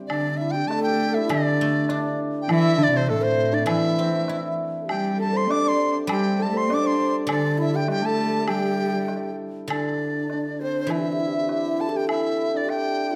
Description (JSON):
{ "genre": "chinese traditional, Chinese chamber ensemble", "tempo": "101 BPM", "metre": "2/4", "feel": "rubato", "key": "G zhi mode", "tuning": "A4 = 441 Hz", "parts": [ { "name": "hammered dulcimer", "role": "second line", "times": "0.0-13.2 s", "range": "A3 to D5", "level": "-28 LUFS", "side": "equal", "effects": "none" }, { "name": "guzheng", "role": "accompaniment", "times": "0.0-12.7 s", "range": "D3 to E4", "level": "-34 LUFS", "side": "equal", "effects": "none" }, { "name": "bright reedy large dizi", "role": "melody", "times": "0.1-13.2 s", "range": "A4 to D6", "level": "-29 LUFS", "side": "equal", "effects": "none" }, { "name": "breathy mellow low xiao", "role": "second line", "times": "0.1-13.2 s", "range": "D4 to D5", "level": "-33 LUFS", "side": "equal", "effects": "none" }, { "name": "dark cello", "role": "second line", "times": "0.1-9.4 s", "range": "A2 to D4", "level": "-28 LUFS", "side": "equal", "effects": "none" }, { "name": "woodblock", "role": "percussion", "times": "0.1-12.8 s", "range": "none", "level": "-35 LUFS", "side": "equal", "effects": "none" } ], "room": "moderate recital hall reverb, RT60 1.6 s", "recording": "close, detailed microphones", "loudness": "-23 LUFS", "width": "mono", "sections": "0.1-9.7 A section; 9.7-13.2 B section", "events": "none", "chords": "none" }